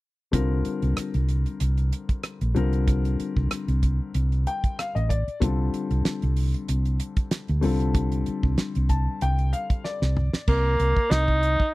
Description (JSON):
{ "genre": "electric jazz fusion", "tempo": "95 BPM", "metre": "4/4", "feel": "swing 54% on 16ths", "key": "unclear", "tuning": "A4 = 440 Hz", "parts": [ { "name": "warm grand piano", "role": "accompaniment", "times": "0.3-10.4 s", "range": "D3 to A5", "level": "-29 LUFS", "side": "left 4 dB", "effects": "none" }, { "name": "hollow-body short-scale fingered electric bass", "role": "bass", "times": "0.3-11.6 s", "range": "A1 to D2", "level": "-23 LUFS", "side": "equal", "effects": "none" }, { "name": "damped 70s drum kit", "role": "drums", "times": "0.3-11.7 s", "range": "crash cymbal, hi-hat, kick drum, rim click, snare drum, toms", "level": "-26 LUFS", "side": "right 1 dB", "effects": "none" }, { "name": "breathy tenor saxophone", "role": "melody", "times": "10.5-11.7 s", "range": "Bb3 to Eb4", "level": "-22 LUFS", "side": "equal", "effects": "slapback echo" } ], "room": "little or no reverb", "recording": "dry, close 1970s-style studio recording", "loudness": "-22 LUFS", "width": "side -20 dB against mid", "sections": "0.3-10.5 A section; 10.5-11.7 B section", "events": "grand piano fill 4.1-5.4, 8.6-10.5; drum fill 9.8-10.5", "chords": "0.3 Csus2; 2.6 Bbadd9/C; 5.4 F69/C; 10.5 Cm7" }